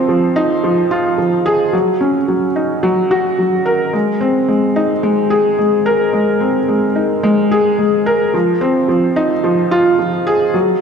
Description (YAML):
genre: electronica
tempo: 109 BPM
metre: 4/4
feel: straight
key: Ab mixolydian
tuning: A4 = 440 Hz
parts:
  - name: felt-muted upright piano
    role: solo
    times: 0.0-10.8 s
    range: F3 to Bb4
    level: -12 LUFS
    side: equal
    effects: none
room: wet concert hall reverb, RT60 1.8 s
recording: dark, warm production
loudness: -12 LUFS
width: side -6 dB against mid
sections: 0.0-10.8 A section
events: none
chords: none